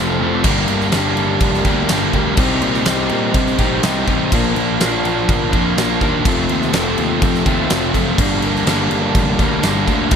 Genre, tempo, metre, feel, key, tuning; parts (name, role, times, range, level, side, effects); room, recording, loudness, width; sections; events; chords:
classic rock; 124 BPM; 4/4; straight; G minor; A4 = 439 Hz
tonewheel organ; sustained chords; 0.0-10.2 s; C4 to F5; -29 LUFS; equal; overdrive, fast rotary speaker
biting overdriven guitar; riff; 0.0-10.2 s; F2 to Eb4; -19 LUFS; right 12 dB; spring reverb
overdriven semi-hollow guitar; riff; 0.0-10.2 s; F2 to G4; -20 LUFS; left 13 dB
fuzz picked electric bass; bass; 0.0-10.2 s; F1 to C3; -23 LUFS; equal; overdrive
huge arena drum kit; drums; 0.4-10.2 s; crash cymbal, kick drum, snare drum; -19 LUFS; equal
light reverb; -14 LUFS; side -7 dB against mid
0.4-10.2 A section
0.4 Gm; 2.4 Cm; 4.3 Bb; 6.2 F; 8.2 Gm